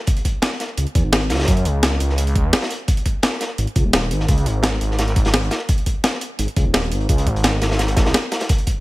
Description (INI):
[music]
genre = liquid drum and bass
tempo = 171 BPM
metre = 4/4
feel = straight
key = unclear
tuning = A4 = 440 Hz
[part]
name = breakbeat sampler-style drum kit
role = drums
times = 0.1-8.7 s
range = hi-hat, snare drum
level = -21 LUFS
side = equal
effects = none
[part]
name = crunchy breakbeat drum kit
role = drums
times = 0.1-8.8 s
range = hi-hat, snare drum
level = -25 LUFS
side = equal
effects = high-pass filter on hats, high-pass filter on snare, high-pass filter on room
[part]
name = electronic kick drum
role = drums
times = 0.1-8.7 s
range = none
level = -18 LUFS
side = equal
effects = none
[part]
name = swelling detuned saw bass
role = bass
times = 0.8-8.1 s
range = D#1 to F#2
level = -19 LUFS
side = equal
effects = none
[sound]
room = small room reverb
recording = none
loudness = -17 LUFS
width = side -19 dB against mid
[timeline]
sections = 0.0-8.8 A section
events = none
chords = none